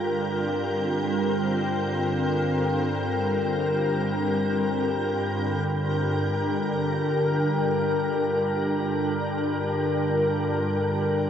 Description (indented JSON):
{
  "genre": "ambient",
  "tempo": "free time",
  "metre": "none",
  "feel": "none",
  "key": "unclear",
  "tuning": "A4 = 444 Hz",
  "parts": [
    { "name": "soft additive organ-like pad", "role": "sustained chords", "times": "0.0-11.3 s", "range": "G2 to Bb4", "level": "-23 LUFS", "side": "equal", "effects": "ensemble chorus, built-in reverb" },
    { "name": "wind-like tuned noise texture", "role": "texture", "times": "0.0-11.3 s", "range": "G5 to G6", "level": "-35 LUFS", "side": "left 1 dB", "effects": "built-in reverb" }
  ],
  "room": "wet huge ambient reverb, RT60 8.2 s",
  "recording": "worn, warbling old tape, cassette tape, warbly pitch drift",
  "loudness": "-23 LUFS",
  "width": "side -8 dB against mid",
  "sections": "0.0-11.3 A section",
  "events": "none",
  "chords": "0.0 C5/G",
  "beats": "free time"
}